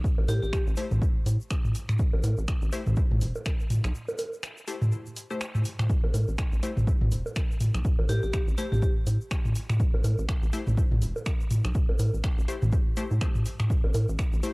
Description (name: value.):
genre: minimal techno.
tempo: 123 BPM.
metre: 4/4.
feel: swing 58% on 16ths.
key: A minor.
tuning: A4 = 438 Hz.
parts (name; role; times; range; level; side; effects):
rubbery square bass; bass; 0.0-14.4 s; E1 to A2; -27 LUFS; equal; sidechain pumping.
electronic kick drum; drums; 0.0-14.3 s; none; -26 LUFS; equal; cassette tape.
egg shaker; percussion; 0.1-14.5 s; none; -48 LUFS; left 2 dB; none.
electronic bongos and toms; percussion; 0.2-14.1 s; none; -28 LUFS; equal; cassette tape.
vibraphone with hard mallets; melody; 0.3-0.5, 8.1-8.8 s; G4; -35 LUFS; left 1 dB; cassette tape, analog delay.
techno drum kit; drums; 0.3-14.5 s; finger snaps, hi-hat; -39 LUFS; equal; cassette tape.
wavetable chord stab; stabs; 0.8-14.5 s; A3 to C5; -36 LUFS; left 3 dB; cassette tape, analog delay.
room: little or no reverb.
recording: home recording on cassette.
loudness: -24 LUFS.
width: side -28 dB against mid.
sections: 0.0-14.5 A section.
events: break 3.9-5.9.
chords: none.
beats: | 0.04 0.53 1.02 1.51 | 1.99 2.48 2.97 3.46 | 3.94 4.43 4.92 5.41 | 5.90 6.38 6.87 7.36 | 7.85 8.34 8.82 9.31 | 9.80 10.29 10.77 11.26 | 11.75 12.24 12.72 13.21 | 13.70 14.19.